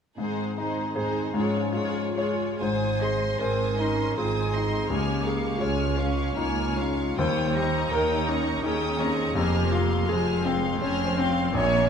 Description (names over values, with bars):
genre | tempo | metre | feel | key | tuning
classical, romantic movement for piano and orchestra | 63-85 BPM | 3/4 | rubato | Ab major | A4 = 444 Hz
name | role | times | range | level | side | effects
clear concert grand piano | melody | 0.2-11.9 s | Bb1 to Db5 | -27 LUFS | left 2 dB | none
warm symphonic violin section | second line | 0.2-11.9 s | Ab4 to C6 | -32 LUFS | left 1 dB | none
warm symphonic viola section | accompaniment | 0.2-11.9 s | G3 to F4 | -33 LUFS | right 1 dB | none
warm French horn section | sustained chords | 0.2-2.2 s | Eb3 to Db4 | -35 LUFS | left 2 dB | none
rich symphonic cello section | bass | 0.2-11.9 s | Db2 to Bb2 | -33 LUFS | right 4 dB | none
dark clarinet | second line | 1.7-11.9 s | F4 to Db5 | -30 LUFS | left 1 dB | none
warm symphonic violin section | melody | 2.6-11.9 s | C6 to F6 | -37 LUFS | equal | none
rich symphonic double bass section | bass | 2.6-11.9 s | F1 to Eb2 | -32 LUFS | right 4 dB | none
room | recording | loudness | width
moderate scoring stage reverb, RT60 1.9 s | none | -23 LUFS | side -7 dB against mid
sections
0.2-2.6 A section; 2.6-11.9 B section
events
none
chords
0.2 Ab; 1.4 Db/Ab; 2.6 Ab; 4.9 Db; 7.2 Eb7; 9.4 Fm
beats
| 0.19 0.97 1.73 | 2.61 3.40 4.17 | 4.90 5.61 6.37 | 7.18 7.92 8.64 | 9.36 10.09 10.81 | 11.54